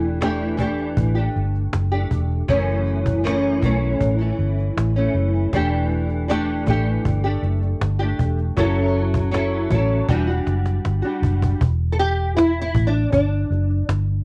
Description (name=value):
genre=indie pop, bedroom pop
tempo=79 BPM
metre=4/4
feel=straight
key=E dorian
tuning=A4 = 440 Hz
part: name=nylon-string guitar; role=accompaniment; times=0.0-13.8 s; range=F#2 to A4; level=-24 LUFS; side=equal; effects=ensemble chorus, vibrato effect, cassette tape
part: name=vintage muted fingered electric bass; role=bass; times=0.0-14.2 s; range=E1 to B1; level=-23 LUFS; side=equal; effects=none
part: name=cajon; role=drums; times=0.0-14.2 s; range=none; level=-28 LUFS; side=equal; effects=cassette tape
room=light reverb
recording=home recording on cassette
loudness=-21 LUFS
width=mono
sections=0.0-11.6 A section; 11.6-14.2 B section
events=drum fill 10.1-11.6; nylon-string guitar solo 11.6-14.2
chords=0.0 Em11; 2.5 F#m7; 5.5 Em11; 8.6 F#m7; 10.1 Em9; 11.6 Em11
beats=0.21 0.97 1.73 | 2.49 3.25 4.01 4.77 | 5.53 6.29 7.05 7.81 | 8.57 9.33 10.09 10.85 | 11.61 12.37 13.13 13.89